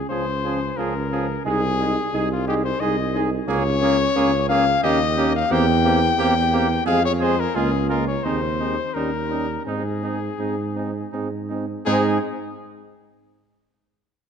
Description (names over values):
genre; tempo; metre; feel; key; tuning
classical, brass quintet; 81-90 BPM; 3/4; straight; Ab major; A4 = 439 Hz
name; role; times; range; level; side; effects
warm cornet; melody; 0.0-12.2 s; F4 to G5; -24 LUFS; left 6 dB; none
warm trumpet; second line; 0.1-12.2 s; Eb4 to Ab4; -29 LUFS; right 8 dB; none
bright trombone; accompaniment; 0.1-12.2 s; F3 to Bb3; -30 LUFS; right 3 dB; none
warm French horn; accompaniment; 0.1-12.2 s; Bb3 to Eb4; -28 LUFS; left 3 dB; none
mellow tuba; bass; 0.1-12.2 s; C2 to Ab2; -23 LUFS; right 3 dB; none
room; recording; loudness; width
wet scoring stage reverb, RT60 1.7 s; dark, warm production; -19 LUFS; side -7 dB against mid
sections
0.0-11.9 A section; 11.9-14.0 B section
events
none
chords
0.0 Db; 1.5 Ab/C; 3.5 Bbm7/Db; 4.8 Eb7; 5.5 C7/E; 6.9 Fm; 7.6 Bbm7/Db; 8.2 Ab/Eb; 8.9 Eb7; 9.7 Ab